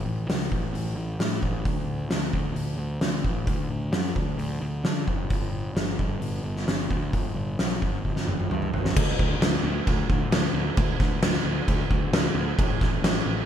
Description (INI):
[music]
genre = quiet-loud alternative rock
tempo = 132 BPM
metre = 4/4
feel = straight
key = unclear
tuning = A4 = 436 Hz
[part]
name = fuzz picked electric bass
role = bass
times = 0.0-13.4 s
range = F#1 to D3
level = -29 LUFS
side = equal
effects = overdrive
[part]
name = oversized low-tuned drum kit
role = drums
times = 0.3-13.1 s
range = crash cymbal, hi-hat, kick drum, snare drum, toms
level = -25 LUFS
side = equal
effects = none
[sound]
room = light reverb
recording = none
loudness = -23 LUFS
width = side -9 dB against mid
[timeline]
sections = 0.0-9.0 A section; 9.0-13.5 B section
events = drum fill 8.0-9.0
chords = none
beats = 0.29 0.74 1.20 | 1.65 2.11 2.56 3.02 | 3.48 3.93 4.39 4.85 | 5.30 5.76 6.22 6.67 | 7.13 7.59 8.04 8.50 | 8.96 9.41 9.86 10.32 | 10.77 11.22 11.68 12.13 | 12.59 13.04